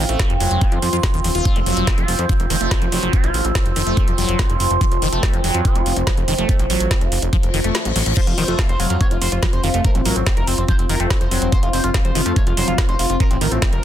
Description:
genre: psychedelic trance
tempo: 143 BPM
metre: 4/4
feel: straight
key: F major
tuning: A4 = 441 Hz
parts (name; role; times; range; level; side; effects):
- overtone-sweeping drone; sustained chords; 0.0-13.8 s; C4; -26 LUFS; right 2 dB; chorus, built-in reverb, sidechain pumping
- liquid acid bass; riff; 0.0-13.8 s; Eb3 to F4; -25 LUFS; moving between left 5 dB and right 6 dB; phaser, auto-pan, sidechain pumping, dub echo
- fat analog bass; bass; 0.0-13.8 s; Eb1 to F2; -21 LUFS; equal; none
- deep dark ambient pad; texture; 0.0-13.8 s; F4 to A5; -27 LUFS; left 2 dB; chorus, built-in reverb, sidechain pumping
- garage drum kit; drums; 0.1-13.8 s; crash cymbal, hi-hat, snare drum; -24 LUFS; equal; none
- electronic kick drum; drums; 0.2-13.7 s; none; -18 LUFS; equal; none
- reverse cymbal; sound effects; 7.5-8.2 s; none; -27 LUFS; left 7 dB; none
- overdriven synth lead; melody; 8.2-13.8 s; C4 to Db5; -25 LUFS; equal; distortion, phaser, sidechain pumping, digital delay
room: digital ambience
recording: dense, heavily limited modern master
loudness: -15 LUFS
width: side -11 dB against mid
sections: 0.0-13.8 A section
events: reverse cymbal 7.5-8.2; kick drops out 7.7-8.2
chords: 0.0 F5

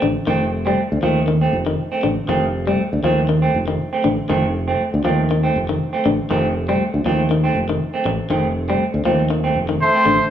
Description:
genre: afrobeat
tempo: 120 BPM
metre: 4/4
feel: swing 54% on 16ths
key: F mixolydian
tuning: A4 = 440 Hz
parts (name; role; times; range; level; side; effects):
- electric guitar at the edge of break-up; arpeggios; 0.0-10.2 s; D3 to G3; -22 LUFS; left 4 dB; none
- semi-hollow electric guitar; stabs; 0.0-10.1 s; Eb3 to C4; -21 LUFS; right 4 dB; spring reverb
- fingered electric bass; bass; 0.0-10.2 s; F1 to Eb2; -20 LUFS; equal; none
- warm trumpet; melody; 9.8-10.3 s; C5; -14 LUFS; equal; none
- bright trombone; second line; 9.8-10.3 s; A3; -22 LUFS; right 1 dB; none
room: moderate large studio reverb, RT60 1.1 s, small room ambience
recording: small room reverb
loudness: -16 LUFS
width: side -10 dB against mid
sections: 0.0-10.3 A section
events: none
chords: 0.0 F7

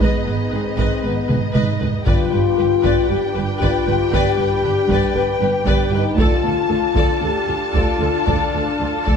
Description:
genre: cinematic, epic orchestral film score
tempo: 117 BPM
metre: 4/4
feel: straight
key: unclear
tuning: A4 = 440 Hz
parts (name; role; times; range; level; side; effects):
- warm symphonic violin section; melody; 0.0-9.2 s; Eb5 to A5; -27 LUFS; left 5 dB; none
- rich studio violin section; second line; 0.0-9.2 s; F4 to Eb5; -29 LUFS; left 1 dB; none
- warm symphonic viola section; accompaniment; 0.0-9.2 s; A4 to Cb5; -28 LUFS; right 2 dB; none
- dark symphonic string section; sustained chords; 0.0-9.2 s; D4 to A5; -26 LUFS; equal; none
- warm French horn section; sustained chords; 0.0-9.2 s; Cb4 to B4; -21 LUFS; left 6 dB; none
- dark symphonic cello section; bass; 0.0-9.1 s; D2 to Ab2; -25 LUFS; right 4 dB; none
- warm symphonic double bass section; bass; 0.0-9.1 s; G1 to D2; -24 LUFS; right 4 dB; none
- taiko ensemble; drums; 0.0-9.2 s; none; -22 LUFS; equal; none
- timpani; percussion; 2.1-2.8 s; G2; -26 LUFS; left 2 dB; none
room: moderate scoring stage reverb, RT60 1.8 s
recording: dark, warm production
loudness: -16 LUFS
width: side -6 dB against mid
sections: 0.0-9.2 A section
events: drum fill 1.3-2.1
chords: 0.0 Abm; 2.1 G; 6.2 Dm

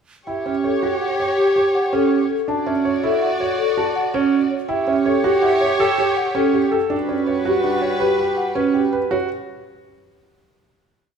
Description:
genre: classical, minimalist pattern music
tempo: 163 BPM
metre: 6/4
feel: straight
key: A mixolydian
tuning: A4 = 440 Hz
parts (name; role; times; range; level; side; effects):
- marimba with soft mallets; melody; 0.3-9.3 s; G4 to A5; -23 LUFS; left 8 dB; none
- alto flute; second line; 0.3-8.9 s; F#4 to G4; -23 LUFS; right 3 dB; none
- dark studio violin section; sustained chords; 0.3-8.9 s; G3 to D5; -26 LUFS; left 2 dB; none
- warm concert grand piano; arpeggios; 0.3-9.3 s; C#4 to C#5; -20 LUFS; right 6 dB; none
room: moderate recital hall reverb, RT60 1.6 s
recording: none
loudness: -17 LUFS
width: side -6 dB against mid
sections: 0.3-9.1 A section; 9.1-11.2 final chord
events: none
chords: 0.3 A7; 2.5 Dmaj7; 4.7 A7; 6.9 Gmaj7; 9.1 F#5

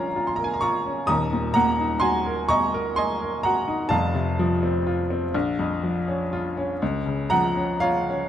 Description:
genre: classical, romantic nocturne for solo piano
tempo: 37-44 BPM (dotted quarters)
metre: 6/8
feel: rubato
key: Bb minor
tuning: A4 = 442 Hz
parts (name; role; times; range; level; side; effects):
- clear upright piano; solo; 0.0-8.3 s; Eb1 to Eb6; -21 LUFS; equal; none
room: light reverb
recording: dark, warm production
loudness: -21 LUFS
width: side -10 dB against mid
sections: 0.0-8.3 A section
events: none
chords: 0.0 Bbm; 1.1 Ebm; 3.9 F; 5.3 Bbm; 6.8 Dbadd11

